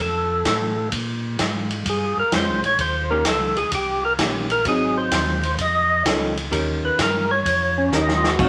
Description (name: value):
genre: soul jazz organ trio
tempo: 129 BPM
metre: 4/4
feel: swing 68% on 8ths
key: unclear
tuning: A4 = 439 Hz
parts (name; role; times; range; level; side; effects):
- percussive tonewheel organ; melody; 0.0-8.5 s; Db4 to Eb5; -23 LUFS; equal; slow rotary speaker, overdrive
- mellow tonewheel organ; bass; 0.0-8.5 s; Ab1 to Bb2; -30 LUFS; equal; slow rotary speaker
- swinging big-band drum kit; drums; 0.5-8.5 s; crash cymbal, hi-hat, kick drum, ride cymbal, snare drum; -26 LUFS; equal; none
- vintage hollow-body jazz guitar; accompaniment; 2.3-8.5 s; Eb3 to Bb4; -27 LUFS; equal; none
room: moderate studio ambience, RT60 0.5 s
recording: none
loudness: -21 LUFS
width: mono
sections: 0.0-8.4 A section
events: tonewheel organ solo 0.0-8.4; drum fill 7.9-8.4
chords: 0.0 F; 0.9 Bbm7; 2.8 Eb7; 4.6 Ab7; 5.6 Faug7; 6.5 Eb7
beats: 0.45 | 0.92 1.38 1.85 2.31 | 2.78 3.25 3.71 4.18 | 4.65 5.12 5.58 6.05 | 6.52 6.98 7.45 7.92 | 8.39